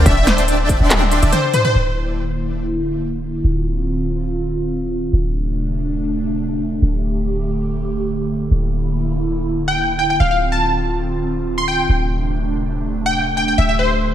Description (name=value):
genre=future bass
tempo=142 BPM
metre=4/4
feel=half-time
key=D minor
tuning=A4 = 440 Hz
part: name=plucky unison lead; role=melody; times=0.0-1.7, 9.7-14.0 s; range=C5 to C6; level=-19 LUFS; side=left 1 dB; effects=analog chorus, sidechain pumping, analog delay
part: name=dense compressed supersaw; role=riff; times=0.0-1.4 s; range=D4 to C6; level=-20 LUFS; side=equal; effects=sidechain pumping, low-pass filter, ping-pong delay
part: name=warm 808-style bass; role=bass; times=0.0-14.1 s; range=D1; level=-20 LUFS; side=equal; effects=sidechain pumping
part: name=big-room dance drum kit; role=drums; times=0.1-1.7 s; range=handclaps, hi-hat, snare drum, toms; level=-18 LUFS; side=equal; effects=overdrive, low-pass filter on hats, studio reverb, low-pass filter on snare, low-pass filter on toms
part: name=electronic kick drum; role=drums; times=0.1-0.8 s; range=none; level=-17 LUFS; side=equal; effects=overdrive, studio reverb
part: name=airy breathy pad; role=sustained chords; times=1.9-14.1 s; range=C3 to G4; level=-22 LUFS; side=right 1 dB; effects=chorus, sidechain pumping
room=moderate plate reverb, RT60 1.6 s, digital ambience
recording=dreamy mix soaked in reverb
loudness=-16 LUFS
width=side -11 dB against mid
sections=0.0-1.7 A section; 1.7-14.1 B section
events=drop 0.0-1.7; drum fill 0.9-1.7; filter sweep on analog synth pad 1.7-14.1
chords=0.1 A7sus4/D; 1.7 Dsus2; 3.4 Dm7; 5.1 Amadd11/D; 6.8 A7sus4/D; 8.5 Gm6/D (rootless); 10.2 Dm7; 11.9 D7(no3); 13.6 A7sus4/D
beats=| 0.06 0.48 0.90 1.33 | 1.75 2.17 2.59 3.02 | 3.44 3.86 4.28 4.71 | 5.13 5.55 5.97 6.40 | 6.82 7.24 7.66 8.09 | 8.51 8.93 9.35 9.78 | 10.20 10.62 11.04 11.47 | 11.89 12.31 12.73 13.16 | 13.58 14.00